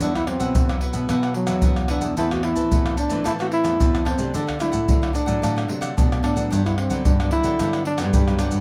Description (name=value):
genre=samba and choro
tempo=111 BPM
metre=4/4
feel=straight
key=G major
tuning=A4 = 441 Hz
part: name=mellow trombone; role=melody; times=0.0-8.6 s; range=F#3 to F#4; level=-26 LUFS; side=equal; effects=none
part: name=cavaquinho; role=accompaniment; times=0.0-8.6 s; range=D4 to A5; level=-35 LUFS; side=equal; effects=none
part: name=nylon-string guitar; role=accompaniment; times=0.0-8.6 s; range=G2 to E4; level=-33 LUFS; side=equal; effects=none
part: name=nylon-string guitar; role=bass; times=0.0-8.6 s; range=E2 to E3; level=-28 LUFS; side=equal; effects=none
part: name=maracas, surdo, pandeiro and tamborim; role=percussion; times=0.0-8.6 s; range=none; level=-25 LUFS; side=equal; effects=none
room=light reverb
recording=close, detailed microphones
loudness=-21 LUFS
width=mono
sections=0.0-8.6 A section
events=none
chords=0.0 Esus2; 2.2 Amadd9/E; 4.3 D; 6.5 Gmaj7